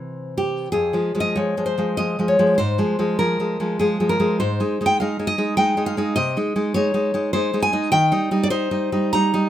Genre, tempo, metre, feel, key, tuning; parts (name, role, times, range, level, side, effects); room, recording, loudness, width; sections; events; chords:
romantic piece for solo classical guitar; 84-105 BPM; 3/4; rubato; F minor; A4 = 442 Hz
nylon-string guitar; solo; 0.0-9.5 s; F2 to Bb5; -18 LUFS; equal
light reverb; minimal, uncompressed stereo recording; -18 LUFS; side -11 dB against mid
0.7-9.5 A section
0.0 C; 0.7 Fm; 2.6 Fm/Ab; 4.4 Ab5; 6.2 Ab/C; 7.9 Cm/Eb